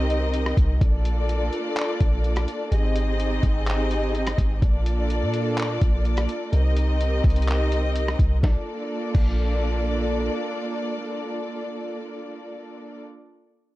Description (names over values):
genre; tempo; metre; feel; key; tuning
hip hop, atmospheric cloud-rap; 126 BPM; 4/4; half-time; Bb major; A4 = 440 Hz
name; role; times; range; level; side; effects
dark symphonic string section; sustained chords; 0.0-13.0 s; Bb3 to Eb5; -27 LUFS; equal; sidechain pumping
clean 808-style bass; bass; 0.0-10.3 s; Ab1 to Bb2; -23 LUFS; equal; none
lo-fi sampler-style drum kit; drums; 0.1-9.3 s; crash cymbal, handclaps, hi-hat, kick drum, rim click, snare drum; -24 LUFS; equal; none
room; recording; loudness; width
little or no reverb; dark, warm production; -21 LUFS; side -17 dB against mid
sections
0.0-8.4 A section; 8.4-12.2 B section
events
none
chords
0.0 Cm7; 0.8 Bbmaj7; 2.7 Abmaj7; 4.6 Bbmaj7; 6.5 Cm7; 8.4 Bbmaj7